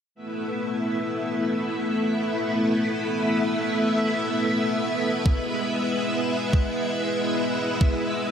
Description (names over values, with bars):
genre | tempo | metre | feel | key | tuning
synthwave | free time | none | none | unclear | A4 = 440 Hz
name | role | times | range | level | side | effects
string machine, full ensemble | sustained chords | 0.1-8.3 s | G#3 to E5 | -23 LUFS | equal | ensemble chorus, sidechain pumping
electronic kick drum | drums | 5.3-7.9 s | none | -20 LUFS | equal | overdrive
room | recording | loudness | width
wet plate reverb, RT60 1.9 s, digital ambience | bright 1980s-style digital production | -22 LUFS | side -8 dB against mid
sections
0.1-8.3 A section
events
none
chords
0.1 Asus2; 5.3 E